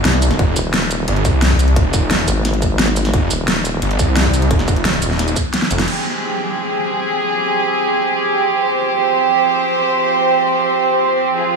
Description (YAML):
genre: dark technical drum and bass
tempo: 175 BPM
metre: 4/4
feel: straight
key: F minor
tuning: A4 = 440 Hz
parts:
  - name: wide detuned saw bass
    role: bass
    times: 0.0-5.9 s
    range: Eb1 to C2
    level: -16 LUFS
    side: equal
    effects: chorus, tube saturation, sidechain pumping
  - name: dubstep drum kit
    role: drums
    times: 0.1-5.9 s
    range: crash cymbal, hi-hat, shaker, snare drum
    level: -20 LUFS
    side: equal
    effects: overdrive, small room reverb
  - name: electronic kick drum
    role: drums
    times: 0.4-5.4 s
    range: none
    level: -17 LUFS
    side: equal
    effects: small room reverb
  - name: vowel-sweep wobble bass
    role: bass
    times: 0.6-3.8 s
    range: Eb1 to Ab1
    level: -18 LUFS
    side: equal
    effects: chorus
  - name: rich chamber string section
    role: sustained chords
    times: 5.9-11.6 s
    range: F3 to C5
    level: -14 LUFS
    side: right 2 dB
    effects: sidechain pumping
room: moderate huge ambient reverb, RT60 9.1 s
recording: dreamy mix soaked in reverb, studio ambience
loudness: -14 LUFS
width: side -4 dB against mid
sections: 0.0-5.9 A section; 5.9-11.6 B section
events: drop 0.0-5.9; drum fill 5.5-5.9; band accent 5.8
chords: 0.0 Fm